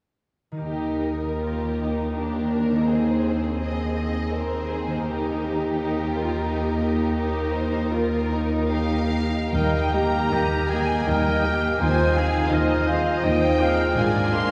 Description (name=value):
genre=classical, slow romantic movement for symphony orchestra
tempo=68-88 BPM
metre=3/4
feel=rubato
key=Eb major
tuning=A4 = 440 Hz
part: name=concert harp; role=arpeggios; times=0.5-14.5 s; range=Ab2 to Eb5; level=-34 LUFS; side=equal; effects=none
part: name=warm symphonic violin section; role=melody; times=0.6-14.5 s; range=G4 to C6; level=-33 LUFS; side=equal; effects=none
part: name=warm symphonic violin section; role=second line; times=0.6-14.5 s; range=G4 to G5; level=-31 LUFS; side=equal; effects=none
part: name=rich symphonic viola section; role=accompaniment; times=0.6-14.5 s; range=G3 to G4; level=-32 LUFS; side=equal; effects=none
part: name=rich studio cello section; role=bass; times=0.6-14.5 s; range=Eb2 to Eb3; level=-28 LUFS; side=equal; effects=none
part: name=warm clarinet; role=second line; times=9.5-14.5 s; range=D4 to G4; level=-32 LUFS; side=equal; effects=none
part: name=warm oboe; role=second line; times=9.5-14.5 s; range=G4 to Eb5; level=-30 LUFS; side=equal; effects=none
part: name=mellow bassoon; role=accompaniment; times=9.5-14.5 s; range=Bb3 to C4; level=-34 LUFS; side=equal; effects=none
part: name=warm symphonic double bass section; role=bass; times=9.5-14.5 s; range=Ab1 to Eb2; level=-28 LUFS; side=equal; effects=none
room=wet cathedral reverb, RT60 5.9 s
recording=heard from further back in the room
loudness=-23 LUFS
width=mono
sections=0.6-9.5 A section; 9.5-14.5 B section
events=none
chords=0.6 Eb; 2.9 Ab/Eb; 5.1 Eb; 11.8 Ab6/Eb; 14.0 Bb7/Ab